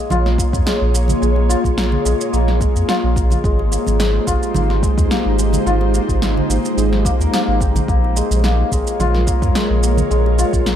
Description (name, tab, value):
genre	organic downtempo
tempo	108 BPM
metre	4/4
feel	swing 54% on 16ths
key	Bb dorian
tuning	A4 = 440 Hz
part	ethereal airy pad	sustained chords	0.0-10.8 s	Ab3 to Db5	-22 LUFS	right 1 dB	ensemble chorus, built-in reverb, sidechain pumping
part	santur	arpeggios	0.0-10.8 s	Ab3 to Bb4	-21 LUFS	left 3 dB	analog delay
part	warm sub bass	bass	0.1-10.8 s	Ab1 to F2	-17 LUFS	equal	sidechain pumping
part	electronic shaker and snare drum	drums	0.1-10.8 s	none	-24 LUFS	right 1 dB	overdrive
part	congas and bongos	percussion	0.1-10.4 s	none	-26 LUFS	right 4 dB	none
part	electronic kick drum	drums	0.4-10.6 s	none	-19 LUFS	equal	overdrive
room	digital ambience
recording	dry, gritty hardware recording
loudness	-14 LUFS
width	side -10 dB against mid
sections	0.0-10.8 A section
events	none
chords	0.0 Bbm7; 3.4 Abmaj7; 7.9 Bbm7